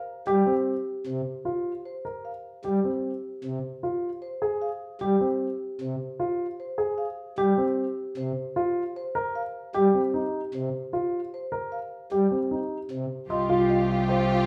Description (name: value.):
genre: classical, minimalist pattern music.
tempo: 152 BPM.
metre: 6/4.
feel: straight.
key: unclear.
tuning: A4 = 441 Hz.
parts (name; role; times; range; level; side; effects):
marimba with medium mallets; melody; 0.0-14.3 s; G4 to C6; -32 LUFS; equal; none.
pipe organ, principal; accompaniment; 0.3-13.1 s; C3 to G3; -32 LUFS; equal; none.
warm grand piano; arpeggios; 0.3-14.3 s; C4 to Eb5; -30 LUFS; equal; none.
clear French horn; second line; 13.3-14.4 s; F4; -30 LUFS; equal; none.
rich studio string section; sustained chords; 13.3-14.5 s; F4 to G4; -33 LUFS; equal; none.
rich cello; bass; 13.3-14.5 s; C2; -28 LUFS; equal; none.
room: moderate large studio reverb, RT60 0.9 s.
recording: none.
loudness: -28 LUFS.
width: mono.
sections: 0.0-13.3 A section; 13.3-14.5 B section.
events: none.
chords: 0.0 C7sus4; 3.8 Fm; 8.6 C7sus4; 13.3 Csus4.